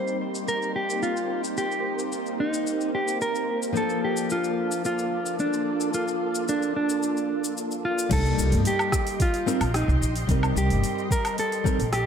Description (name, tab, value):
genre	sunset chillout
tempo	110 BPM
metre	4/4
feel	straight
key	C dorian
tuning	A4 = 440 Hz
part	mellow electric guitar	melody	0.0-12.1 s	D4 to C5	-27 LUFS	right 1 dB	digital delay
part	flamenco guitar	accompaniment	0.0-11.8 s	F3 to Bb4	-31 LUFS	left 2 dB	auto-pan
part	soft string machine	sustained chords	0.0-12.1 s	Bb3 to C6	-31 LUFS	equal	ensemble chorus
part	smooth R&B drum kit	drums	0.1-12.0 s	crash cymbal, hi-hat, rim click, shaker, woodblock	-32 LUFS	left 2 dB	low-pass filter on perc, low-pass filter on hats, low-pass filter on cymbals, low-pass filter on snare, low-pass filter on room
part	upright bass	bass	8.1-12.0 s	G1 to C2	-24 LUFS	equal	tube saturation
part	electronic kick drum	drums	8.1-11.8 s	none	-25 LUFS	equal	none
room	moderate recital hall reverb, RT60 1.4 s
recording	none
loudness	-23 LUFS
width	side -7 dB against mid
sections	0.0-8.1 A section; 8.1-12.1 B section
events	none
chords	0.0 Cm7; 3.7 Bbmaj7; 8.1 Cm7